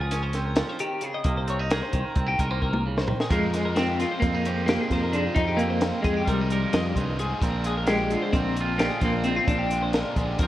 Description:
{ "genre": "math rock and midwest emo", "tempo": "262 BPM (eighths)", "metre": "9/8", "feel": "straight", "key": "F dorian from 3.3 s", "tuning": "A4 = 440 Hz", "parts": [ { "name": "twangy electric guitar", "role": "accompaniment", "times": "0.0-10.5 s", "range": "F2 to Bb4", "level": "-32 LUFS", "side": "right 4 dB", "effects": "none" }, { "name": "twelve-string electric guitar", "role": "arpeggios", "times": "0.0-10.5 s", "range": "F4 to Eb5", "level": "-30 LUFS", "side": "left 3 dB", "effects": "analog chorus, slapback echo" }, { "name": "fingered electric bass", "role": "bass", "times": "0.0-10.5 s", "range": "Bb1 to F2", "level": "-28 LUFS", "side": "equal", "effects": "none" }, { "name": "compact cocktail drum kit", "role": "drums", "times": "0.1-10.5 s", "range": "hi-hat, kick drum, snare drum, toms", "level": "-27 LUFS", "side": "equal", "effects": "none" }, { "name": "semi-hollow electric guitar", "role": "melody", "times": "3.3-10.5 s", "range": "G3 to Eb4", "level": "-27 LUFS", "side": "left 1 dB", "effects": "tremolo, slapback echo" }, { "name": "biting overdriven guitar", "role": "riff", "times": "3.3-10.5 s", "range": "F2 to F4", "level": "-33 LUFS", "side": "equal", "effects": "none" } ], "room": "moderate recital hall reverb, RT60 1.5 s, small room ambience", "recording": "worn, warbling old tape, cassette tape, warbly pitch drift", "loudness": "-22 LUFS", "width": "side -14 dB against mid", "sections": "0.0-3.3 A section; 3.3-10.5 B section", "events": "drum fill 2.6-3.3", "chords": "0.0 Dbmaj7; 1.2 Cm7; 3.3 Fm11; 7.4 Bb9" }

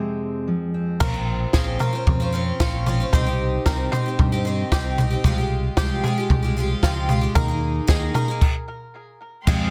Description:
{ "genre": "indie folk with a building arrangement", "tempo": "113 BPM", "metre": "4/4", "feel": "straight", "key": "F minor", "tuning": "A4 = 437 Hz", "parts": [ { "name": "fingerpicked steel-string acoustic guitar", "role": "accompaniment", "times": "0.0-3.1 s", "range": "F2 to Ab4", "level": "-26 LUFS", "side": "equal", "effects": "none" }, { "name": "picked twelve-string acoustic guitar", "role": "accompaniment", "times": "1.0-9.7 s", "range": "F2 to Ab4", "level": "-29 LUFS", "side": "equal", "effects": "none" }, { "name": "bluegrass banjo", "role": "arpeggios", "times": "1.0-9.7 s", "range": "F4 to C5", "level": "-33 LUFS", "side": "equal", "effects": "tape echo" }, { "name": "fingered electric bass", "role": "bass", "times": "1.0-9.7 s", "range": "Bb1 to G2", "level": "-27 LUFS", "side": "equal", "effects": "none" }, { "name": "compact cocktail drum kit", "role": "drums", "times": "1.0-9.6 s", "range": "crash cymbal, kick drum, snare drum, toms", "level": "-24 LUFS", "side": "equal", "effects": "none" }, { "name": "rich chamber string section", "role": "sustained chords", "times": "9.5-9.7 s", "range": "Ab3 to C6", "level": "-34 LUFS", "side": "equal", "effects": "none" } ], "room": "light reverb, studio reverb", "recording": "dense, heavily limited modern master", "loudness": "-22 LUFS", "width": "mono", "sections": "0.0-1.0 A section; 1.0-9.5 B section", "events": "break 0.0-1.0; stop 8.4-9.5", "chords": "0.0 Fm; 1.0 Bbmadd9; 3.1 Cm; 5.2 Fmadd9/C; 7.4 Ebsus4; 8.4 N.C." }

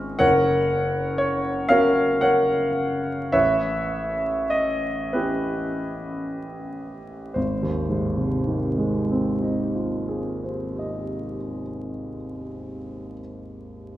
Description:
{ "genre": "classical, impressionist solo piano", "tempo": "25-41 BPM (dotted quarters)", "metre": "6/8", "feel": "rubato", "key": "Ab major", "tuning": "A4 = 440 Hz", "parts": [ { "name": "warm grand piano", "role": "solo", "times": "0.0-14.0 s", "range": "Gb1 to F6", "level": "-22 LUFS", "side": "equal", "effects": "none" } ], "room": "wet recital hall reverb, RT60 1.6 s", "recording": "heard from further back in the room, vinyl crackle", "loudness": "-21 LUFS", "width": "side -14 dB against mid", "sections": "0.0-7.4 A section; 7.4-11.7 B section", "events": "slowing down 0.0-7.4", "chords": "0.2 Gb; 3.3 A9; 7.4 Ab6" }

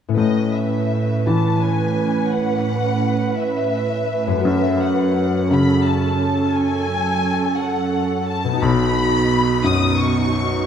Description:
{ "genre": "cinematic, emotional film score for orchestra", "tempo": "57 BPM (dotted quarters)", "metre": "6/8", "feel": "rubato", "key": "A lydian", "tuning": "A4 = 440 Hz", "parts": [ { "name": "concert harp", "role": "arpeggios", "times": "0.1-10.7 s", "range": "F#2 to B4", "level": "-25 LUFS", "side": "left 6 dB", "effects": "none" }, { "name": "dark studio violin section", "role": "melody", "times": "0.2-10.7 s", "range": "D#5 to D#6", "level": "-24 LUFS", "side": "left 4 dB", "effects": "none" }, { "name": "bright grand piano", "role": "accompaniment", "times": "0.2-10.7 s", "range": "B1 to E3", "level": "-21 LUFS", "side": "left 1 dB", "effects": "none" }, { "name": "dark symphonic viola section", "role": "accompaniment", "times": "0.2-10.7 s", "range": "C#4 to B4", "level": "-23 LUFS", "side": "right 4 dB", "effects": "none" }, { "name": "warm symphonic cello section", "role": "bass", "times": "0.2-10.7 s", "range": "F#2 to B2", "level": "-23 LUFS", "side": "right 4 dB", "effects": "none" } ], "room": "moderate scoring stage reverb, RT60 1.9 s", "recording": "dark, warm production", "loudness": "-16 LUFS", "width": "side -8 dB against mid", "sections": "0.2-10.7 A section", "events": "none", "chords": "0.2 Aadd9; 4.4 F#m; 8.6 B" }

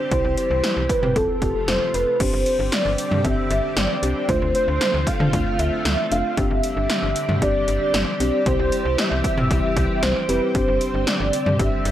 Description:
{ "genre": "synth-pop", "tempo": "115 BPM", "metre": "4/4", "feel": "straight", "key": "unclear", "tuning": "A4 = 437 Hz", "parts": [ { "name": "warm velvety synth lead", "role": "melody", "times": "0.0-11.9 s", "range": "A4 to F5", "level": "-23 LUFS", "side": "right 1 dB", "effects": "chorus, tape echo" }, { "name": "string machine, full ensemble", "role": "sustained chords", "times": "0.0-11.9 s", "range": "C3 to G4", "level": "-28 LUFS", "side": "equal", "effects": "ensemble chorus" }, { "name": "muted felt-like synth keys", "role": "accompaniment", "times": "0.1-11.9 s", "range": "A3 to A4", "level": "-27 LUFS", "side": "left 3 dB", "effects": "chorus, tape echo" }, { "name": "slap-like FM bass", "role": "bass", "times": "0.1-11.9 s", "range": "F1 to D3", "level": "-24 LUFS", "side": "equal", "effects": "none" }, { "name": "80s electronic pad drums", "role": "drums", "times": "0.1-11.9 s", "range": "crash cymbal, hi-hat, kick drum, snare drum, toms", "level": "-24 LUFS", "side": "equal", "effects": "gated reverb on snare and toms, overdrive" } ], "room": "light reverb, digital ambience", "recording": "echo-heavy mix", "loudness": "-18 LUFS", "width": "side -12 dB against mid", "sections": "0.0-2.2 A section; 2.2-11.9 B section", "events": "none", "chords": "0.1 C; 1.2 F; 2.2 Gsus4; 4.3 Dm7; 6.4 Gsus4; 8.5 C; 10.5 Gsus4" }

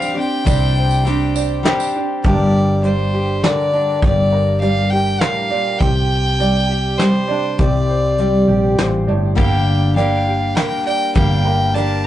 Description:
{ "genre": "indie folk with a building arrangement", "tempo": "101 BPM", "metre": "3/4", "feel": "straight", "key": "G minor", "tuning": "A4 = 439 Hz", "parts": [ { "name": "bright fiddle", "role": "melody", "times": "0.0-12.1 s", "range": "C5 to A5", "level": "-21 LUFS", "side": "left 2 dB", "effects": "none" }, { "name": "picked steel-string acoustic guitar", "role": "accompaniment", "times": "0.0-2.3, 9.4-12.1 s", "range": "G2 to G4", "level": "-20 LUFS", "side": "left 2 dB", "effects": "none" }, { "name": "clear upright piano", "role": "arpeggios", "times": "0.0-12.1 s", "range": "D4 to D5", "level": "-24 LUFS", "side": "right 6 dB", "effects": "none" }, { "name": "tambourine", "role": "percussion", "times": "0.0-1.9 s", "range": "none", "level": "-33 LUFS", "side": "right 4 dB", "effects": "none" }, { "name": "hollow-body short-scale fingered electric bass", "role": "bass", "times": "0.5-12.1 s", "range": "G1 to C2", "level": "-18 LUFS", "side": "equal", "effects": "none" }, { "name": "soft brush drum kit", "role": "drums", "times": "0.5-11.9 s", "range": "hi-hat, kick drum, snare drum", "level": "-19 LUFS", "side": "equal", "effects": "none" }, { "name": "fingerpicked steel-string acoustic guitar", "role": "accompaniment", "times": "2.2-11.2 s", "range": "G2 to Bb4", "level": "-19 LUFS", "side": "equal", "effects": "none" } ], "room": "moderate studio reverb, RT60 0.6 s", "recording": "rough rehearsal-room recording, nothing above 10.5 kHz", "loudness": "-14 LUFS", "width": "side -12 dB against mid", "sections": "0.0-2.2 A section; 2.2-12.1 B section", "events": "none", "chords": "0.0 Csus2; 2.2 Gm; 5.8 Csus2; 9.4 Gm" }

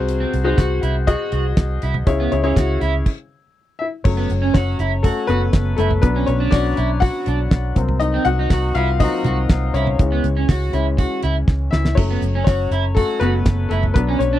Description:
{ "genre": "piano-driven pop", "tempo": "121 BPM", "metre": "4/4", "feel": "straight", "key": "F# minor", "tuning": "A4 = 435 Hz", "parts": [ { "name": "warm upright piano", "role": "accompaniment", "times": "0.0-14.4 s", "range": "B#2 to F#5", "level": "-21 LUFS", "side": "left 5 dB", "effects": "none" }, { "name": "vintage muted fingered electric bass", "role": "bass", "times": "0.0-14.4 s", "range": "F#1 to C#2", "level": "-20 LUFS", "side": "right 1 dB", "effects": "none" }, { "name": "damped 70s drum kit", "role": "drums", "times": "0.1-14.3 s", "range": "crash cymbal, hi-hat, kick drum, snare drum, toms", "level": "-17 LUFS", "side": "right 1 dB", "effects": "none" }, { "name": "electric guitar at the edge of break-up", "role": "riff", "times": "0.2-14.4 s", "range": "B3 to F#4", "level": "-24 LUFS", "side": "right 6 dB", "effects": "lush chorus" } ], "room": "little or no reverb", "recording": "dry, close 1970s-style studio recording", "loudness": "-16 LUFS", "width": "side -13 dB against mid", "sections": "0.0-4.0 A section; 4.0-14.4 A section", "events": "stop 3.1-4.0; upright piano solo 4.0-14.4; drum fill 11.5-12.0", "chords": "0.0 G#7/B#; 2.1 C#m; 4.0 F#m; 6.0 Bm; 7.8 Cm7b5; 10.0 C#m; 12.0 F#m" }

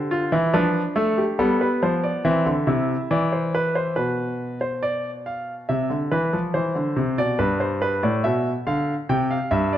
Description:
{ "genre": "classical, baroque-style 3-part fugue for grand piano", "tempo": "70 BPM", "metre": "4/4", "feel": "straight", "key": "C major", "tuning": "A4 = 439 Hz", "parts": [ { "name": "clear concert grand piano", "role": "solo", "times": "0.0-9.8 s", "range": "G2 to G5", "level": "-20 LUFS", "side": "equal", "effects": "none" } ], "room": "moderate recital hall reverb, RT60 1.5 s", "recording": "close, detailed microphones", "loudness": "-20 LUFS", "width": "side -11 dB against mid", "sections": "0.0-4.0 A section; 4.0-9.8 B section", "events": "none", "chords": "0.0 F5; 0.5 G7/F; 2.2 C; 4.0 Bdim; 5.7 C; 7.4 G" }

